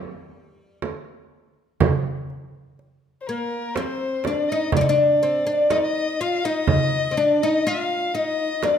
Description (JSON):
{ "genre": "Arabic maqam ensemble", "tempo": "123 BPM (eighths)", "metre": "10/8", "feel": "straight", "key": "G minor", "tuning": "A4 = 443 Hz", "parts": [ { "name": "oud", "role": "melody", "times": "0.0-8.8 s", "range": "G3 to F4", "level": "-21 LUFS", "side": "left 1 dB", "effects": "none" }, { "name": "frame drum", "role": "percussion", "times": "0.8-8.8 s", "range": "none", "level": "-24 LUFS", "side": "right 5 dB", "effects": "none" }, { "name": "darbuka", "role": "percussion", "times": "1.8-8.8 s", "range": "none", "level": "-26 LUFS", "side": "right 5 dB", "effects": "none" }, { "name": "dark violin", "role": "second line", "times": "3.2-8.8 s", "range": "Bb4 to F5", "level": "-25 LUFS", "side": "left 5 dB", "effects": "none" } ], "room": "moderate recital hall reverb, RT60 1.5 s", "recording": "minimal, uncompressed stereo recording", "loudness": "-19 LUFS", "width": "side -8 dB against mid", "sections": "0.0-1.8 A section; 1.8-8.8 B section", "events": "none", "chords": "none" }